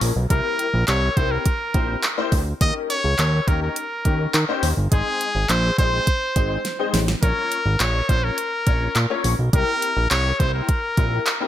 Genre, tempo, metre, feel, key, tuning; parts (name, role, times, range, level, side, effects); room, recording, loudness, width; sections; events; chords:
dance-pop; 104 BPM; 4/4; straight; A4 = 439 Hz
clear grand piano; accompaniment; 0.0-11.5 s; Ab3 to Db5; -28 LUFS; left 6 dB; ensemble chorus, sidechain pumping
fat analog bass; bass; 0.0-11.2 s; G1 to Eb3; -22 LUFS; right 1 dB; sidechain pumping
smooth R&B drum kit; drums; 0.0-11.4 s; handclaps, hi-hat, kick drum, snare drum; -21 LUFS; right 1 dB; gated reverb
downlifter; sound effects; 0.0-2.6 s; -46 LUFS; equal
bright trumpet; melody; 0.3-11.5 s; Ab4 to Eb5; -24 LUFS; equal; digital delay
little or no reverb; bright 1980s-style digital production; -18 LUFS; side -12 dB against mid
0.0-11.5 A section
drum fill 6.6-7.2
0.3 C7; 2.6 Eb7; 4.9 Ab; 7.2 Bbm; 9.5 C7